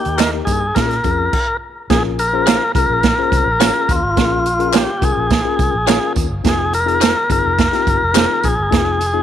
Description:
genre	uptempo 1960s-style soul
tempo	106 BPM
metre	4/4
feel	straight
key	Bb dorian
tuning	A4 = 440 Hz
part	tonewheel organ	melody	0.0-9.2 s	F4 to Bb4	-17 LUFS	left 1 dB	overdrive
part	reed electric piano	accompaniment	0.0-9.2 s	Bb3 to C5	-23 LUFS	left 12 dB	fast tremolo
part	swinging big-band drum kit	drums	0.0-9.1 s	crash cymbal, hi-hat, kick drum, snare drum	-18 LUFS	right 3 dB	none
part	vintage muted fingered electric bass	bass	0.1-9.2 s	F1 to Bb2	-23 LUFS	equal	none
part	clean electric guitar	stabs	0.2-8.3 s	Eb4 to F5	-25 LUFS	right 11 dB	none
part	handclaps and tambourine	percussion	0.2-9.1 s	none	-26 LUFS	left 4 dB	none
room	moderate spring reverb, RT60 2.4 s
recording	1960s-style stereo with parts hard left and right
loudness	-13 LUFS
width	side -10 dB against mid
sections	0.0-1.9 A section; 1.9-9.2 B section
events	stop 1.3-1.9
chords	0.0 Eb; 0.8 Bbm7; 6.4 Fm7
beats	0.19 0.76 1.33 | 1.90 2.47 3.04 3.61 | 4.18 4.74 5.31 5.88 | 6.45 7.02 7.59 8.15 | 8.72

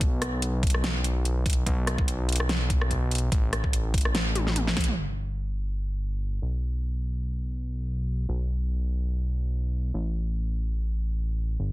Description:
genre	future bass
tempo	145 BPM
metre	4/4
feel	swing 55% on 16ths, half-time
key	unclear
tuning	A4 = 441 Hz
part	fat analog bass	bass	0.0-11.7 s	G1 to B1	-27 LUFS	equal	sidechain pumping
part	electronic kick drum	drums	0.0-4.9 s	none	-26 LUFS	equal	none
part	pop drum kit	drums	0.0-5.0 s	hi-hat, rim click, snare drum, toms	-29 LUFS	equal	low-pass filter on hats, low-pass filter on snare, low-pass filter on toms
room	little or no reverb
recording	dense, heavily limited modern master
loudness	-25 LUFS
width	side -18 dB against mid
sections	0.0-5.0 A section; 5.0-11.7 B section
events	drop 0.0-5.0; drum fill 4.4-5.0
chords	none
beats	| 0.01 0.42 0.84 1.25 | 1.67 2.08 2.49 2.91 | 3.32 3.73 4.15 4.56 | 4.98 5.39 5.80 6.22 | 6.63 7.04 7.46 7.87 | 8.29 8.70 9.11 9.53 | 9.94 10.36 10.77 11.18 | 11.60

